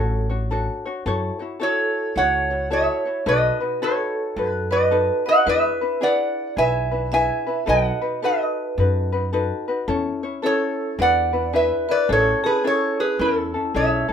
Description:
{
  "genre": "Hawaiian",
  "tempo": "109 BPM",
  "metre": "4/4",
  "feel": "swing 63% on 8ths",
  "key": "A major",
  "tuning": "A4 = 440 Hz",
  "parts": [
    { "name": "metal-body resonator slide guitar", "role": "melody", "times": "0.0-14.1 s", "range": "E4 to G#5", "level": "-21 LUFS", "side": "equal", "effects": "none" },
    { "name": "vibraphone with hard mallets", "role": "second line", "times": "0.0-14.1 s", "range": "E4 to E5", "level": "-26 LUFS", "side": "right 4 dB", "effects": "none" },
    { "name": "ukulele", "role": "accompaniment", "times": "0.0-14.1 s", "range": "C#4 to C#5", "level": "-25 LUFS", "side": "left 4 dB", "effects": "none" },
    { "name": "upright bass", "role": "bass", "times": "0.0-14.1 s", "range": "A1 to F#2", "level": "-26 LUFS", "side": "equal", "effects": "none" }
  ],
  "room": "moderate studio ambience, RT60 0.5 s",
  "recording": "minimal, uncompressed stereo recording",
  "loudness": "-19 LUFS",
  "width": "side -8 dB against mid",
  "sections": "0.0-14.1 A section",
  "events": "none",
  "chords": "0.0 Dmaj7; 1.1 F#m7; 3.3 B7; 5.5 E7; 7.7 B7; 9.9 A/E; 11.0 E7; 12.1 Amaj7",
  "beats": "0.50 | 1.05 1.60 2.16 2.71 | 3.26 3.81 4.36 4.91 | 5.46 6.01 6.57 7.12 | 7.67 8.22 8.77 9.33 | 9.88 10.43 10.98 11.53 | 12.09 12.64 13.19 13.74"
}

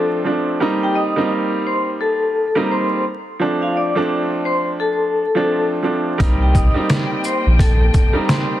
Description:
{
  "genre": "hip hop, boom-bap hip-hop",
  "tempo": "86 BPM",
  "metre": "4/4",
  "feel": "swing 61% on 16ths",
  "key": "C dorian",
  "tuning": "A4 = 440 Hz",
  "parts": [
    { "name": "vibraphone with medium hard mallets", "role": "melody", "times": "0.0-8.6 s", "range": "F4 to Eb6", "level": "-21 LUFS", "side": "left 2 dB", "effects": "high-pass filter, low-pass filter, tape echo" },
    { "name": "warm upright piano", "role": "accompaniment", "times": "0.0-8.6 s", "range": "F3 to Eb4", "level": "-20 LUFS", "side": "right 2 dB", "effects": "cassette tape, high-pass filter, low-pass filter" },
    { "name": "rich studio string section", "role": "sustained chords", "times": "6.2-8.6 s", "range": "Bb3 to G5", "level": "-27 LUFS", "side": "left 3 dB", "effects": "high-pass filter, low-pass filter" },
    { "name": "soft dub sub bass", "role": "bass", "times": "6.2-7.9 s", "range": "Bb1 to C2", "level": "-15 LUFS", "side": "equal", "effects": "none" },
    { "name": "trip hop sampler-style drum kit", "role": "drums", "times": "6.2-8.5 s", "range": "hi-hat, kick drum, shaker, snare drum", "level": "-16 LUFS", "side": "equal", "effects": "none" }
  ],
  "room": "small room ambience",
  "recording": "dense, heavily limited modern master, vinyl crackle",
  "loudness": "-15 LUFS",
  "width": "side -13 dB against mid",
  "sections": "0.0-8.6 A section",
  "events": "none",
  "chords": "0.0 Dm7; 0.6 Cm7; 3.4 Dm7; 6.2 Cm7",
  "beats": "| 0.62 1.32 2.01 2.71 | 3.41 4.11 4.80 5.50 | 6.20 6.90 7.60 8.29"
}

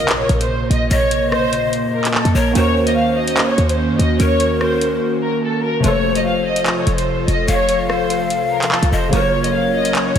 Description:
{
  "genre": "hip hop, drill",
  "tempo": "146 BPM",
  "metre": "4/4",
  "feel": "half-time",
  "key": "Bb harmonic minor",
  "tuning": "A4 = 440 Hz",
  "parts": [
    { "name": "warm studio violin section", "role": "melody", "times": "0.0-10.2 s", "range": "A4 to F5", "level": "-20 LUFS", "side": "right 1 dB", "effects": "low-pass filter, tape echo" },
    { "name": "breathy large pan pipes", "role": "second line", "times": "0.0-10.2 s", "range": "Bb4 to F5", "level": "-22 LUFS", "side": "left 3 dB", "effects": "tape echo" },
    { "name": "glassy digital keys", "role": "accompaniment", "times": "0.0-10.2 s", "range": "C3 to Bb4", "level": "-23 LUFS", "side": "right 1 dB", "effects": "chorus, low-pass filter" },
    { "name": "airy breathy pad", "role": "sustained chords", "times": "0.1-10.2 s", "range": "Bb2 to Bb4", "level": "-22 LUFS", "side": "equal", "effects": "chorus" },
    { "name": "short 808-style bass", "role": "bass", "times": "0.0-10.2 s", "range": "F1 to Gb2", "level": "-20 LUFS", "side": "equal", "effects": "none" },
    { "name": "impact", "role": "sound effects", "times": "0.0-0.9 s", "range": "none", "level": "-37 LUFS", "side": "equal", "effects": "none" },
    { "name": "drill drum kit", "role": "drums", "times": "0.1-10.2 s", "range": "handclaps, hi-hat, rim click", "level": "-22 LUFS", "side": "equal", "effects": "none" }
  ],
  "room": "moderate lush hall reverb, RT60 1.8 s, digital ambience",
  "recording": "dreamy mix soaked in reverb",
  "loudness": "-14 LUFS",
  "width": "side -8 dB against mid",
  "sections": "0.0-10.2 A section",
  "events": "impact 0.0-0.9; break 5.0-5.8",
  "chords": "0.0 Bbmadd9; 2.6 Ebm7; 5.8 F; 9.1 Gbmaj7",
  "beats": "0.09 0.50 | 0.91 1.32 1.73 2.14 | 2.55 2.96 3.37 3.79 | 4.20 4.61 5.02 5.43 | 5.84 6.25 6.66 7.07 | 7.48 7.89 8.31 8.72 | 9.13 9.54 9.95"
}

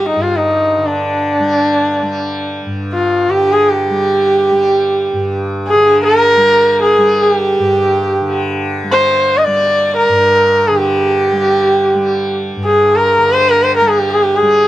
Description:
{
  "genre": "indian classical, Hindustani",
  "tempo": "free time",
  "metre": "none",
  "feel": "none",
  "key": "G raga bhairavi",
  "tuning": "A4 = 440 Hz",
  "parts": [
    { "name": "rich sarangi", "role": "melody", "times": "0.0-14.7 s", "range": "D4 to Eb5", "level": "-11 LUFS", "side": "equal", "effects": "none" },
    { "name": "tanpura", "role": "drone", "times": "0.0-14.7 s", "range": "G2 to G3", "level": "-20 LUFS", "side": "equal", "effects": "none" }
  ],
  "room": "little or no reverb",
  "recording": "dry, close 1970s-style studio recording",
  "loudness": "-10 LUFS",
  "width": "side -14 dB against mid",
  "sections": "0.0-14.7 A section",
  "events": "none",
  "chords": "none",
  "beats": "free time"
}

